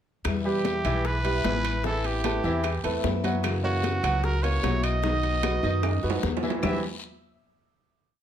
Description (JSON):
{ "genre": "latin, Cuban son and guajira", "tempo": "150 BPM", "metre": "4/4", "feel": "straight", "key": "E harmonic minor", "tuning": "A4 = 440 Hz", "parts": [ { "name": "picked steel-string acoustic guitar", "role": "accompaniment", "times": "0.2-6.8 s", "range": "E2 to F#4", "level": "-33 LUFS", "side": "left 4 dB", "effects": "none" }, { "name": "upright bass", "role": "bass", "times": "0.2-6.8 s", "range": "A1 to F#2", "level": "-28 LUFS", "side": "equal", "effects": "none" }, { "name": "timbales", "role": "percussion", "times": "0.2-6.7 s", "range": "none", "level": "-35 LUFS", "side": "right 7 dB", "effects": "none" }, { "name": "bongos", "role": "percussion", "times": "0.3-6.7 s", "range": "none", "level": "-36 LUFS", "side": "left 6 dB", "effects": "none" }, { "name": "claves", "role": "percussion", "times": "0.3-6.7 s", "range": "none", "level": "-40 LUFS", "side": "left 4 dB", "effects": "none" }, { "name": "congas", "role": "percussion", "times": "0.3-6.7 s", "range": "none", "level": "-34 LUFS", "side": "left 5 dB", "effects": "none" }, { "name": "guiro", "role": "percussion", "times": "0.3-6.7 s", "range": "none", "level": "-43 LUFS", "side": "left 6 dB", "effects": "none" }, { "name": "growling trumpet", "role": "melody", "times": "0.5-6.8 s", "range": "F#4 to E5", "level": "-30 LUFS", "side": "right 3 dB", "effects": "plate reverb" }, { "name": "bright grand piano", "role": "arpeggios", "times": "0.5-6.8 s", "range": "D#3 to F#5", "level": "-30 LUFS", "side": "right 2 dB", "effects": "none" } ], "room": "moderate studio reverb, RT60 0.7 s", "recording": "none", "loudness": "-24 LUFS", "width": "side -9 dB against mid", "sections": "0.2-6.6 verse; 6.6-8.2 final chord", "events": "drum fill 5.8-6.6", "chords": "0.2 Em; 1.8 Amadd9; 3.4 F#7; 5.0 B; 6.6 Em" }